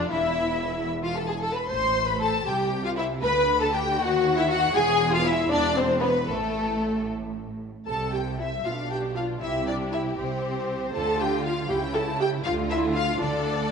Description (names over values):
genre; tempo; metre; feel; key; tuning
quick classical-period movement for string orchestra; 78 BPM (dotted quarters); 6/8; straight; C major from 7.9 s; A4 = 440 Hz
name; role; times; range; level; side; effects
rich symphonic violin section; second line; 0.0-13.7 s; A3 to C5; -30 LUFS; left 2 dB; none
rich symphonic viola section; accompaniment; 0.0-13.7 s; A3 to C5; -28 LUFS; right 1 dB; none
rich symphonic cello section; bass; 0.0-13.7 s; E2 to D#3; -32 LUFS; right 3 dB; none
rich symphonic double bass section; bass; 0.0-13.7 s; E1 to D#2; -33 LUFS; right 4 dB; none
warm symphonic violin section; melody; 0.1-13.7 s; A4 to C6; -28 LUFS; left 5 dB; none
room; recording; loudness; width
moderate scoring stage reverb, RT60 1.7 s; nothing above 10.6 kHz; -23 LUFS; side -6 dB against mid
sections
0.0-7.9 A section; 7.9-13.7 B section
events
none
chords
0.1 N.C.; 0.9 Eadd11; 1.7 Am; 2.5 Cadd11; 3.2 Gadd9/D; 4.0 D#m; 4.7 E; 6.3 N.C.; 7.9 C6; 8.6 G7/B; 9.4 C5; 10.9 Dm; 11.7 A7/C#; 12.4 Dm